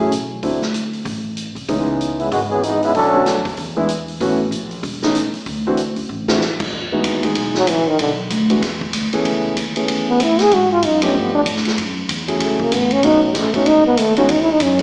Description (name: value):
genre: jazz, big band swing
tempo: 190 BPM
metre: 4/4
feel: swing 61% on 8ths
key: E major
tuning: A4 = 438 Hz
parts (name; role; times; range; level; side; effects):
- warm grand piano; accompaniment; 0.0-14.8 s; D3 to G#4; -22 LUFS; equal; slapback echo
- upright bass; bass; 0.0-14.8 s; E1 to A2; -26 LUFS; equal; none
- swinging big-band drum kit; drums; 0.1-14.8 s; crash cymbal, hi-hat, kick drum, ride cymbal, snare drum; -26 LUFS; equal; none
- warm trombone section; second line; 2.2-3.4 s; D#3 to A4; -18 LUFS; equal; slapback echo
- dark trombone; melody; 7.6-14.8 s; D3 to G#4; -17 LUFS; equal; slapback echo
room: moderate club reverb, RT60 0.7 s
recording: live gig heard through the venue's PA, recital hall reverb, small speaker sound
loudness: -18 LUFS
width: mono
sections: 0.0-6.7 A section; 6.7-14.8 B section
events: trombone section solo 0.0-6.7; drum fill 6.1-6.4; trombone solo 6.7-14.8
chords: 0.4 D9; 1.7 C#m7; 2.9 Bm9; 3.6 E7; 4.2 A6; 5.5 D9; 6.7 Emaj9; 8.0 Bm; 8.6 E7; 9.3 Amaj9; 10.5 G#m7; 11.1 G9; 11.8 F#m9; 13.0 B7; 14.3 Emaj7sus2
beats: 0.11 | 0.42 0.74 1.05 1.37 | 1.69 2.00 2.32 2.63 | 2.95 3.26 3.58 3.89 | 4.21 4.52 4.84 5.15 | 5.47 5.78 6.10 6.42 | 6.73 7.04 7.36 7.68 | 7.99 8.31 8.62 8.94 | 9.25 9.57 9.88 10.20 | 10.51 10.83 11.14 11.46 | 11.77 12.09 12.40 12.72 | 13.03 13.35 13.66 13.98 | 14.29 14.61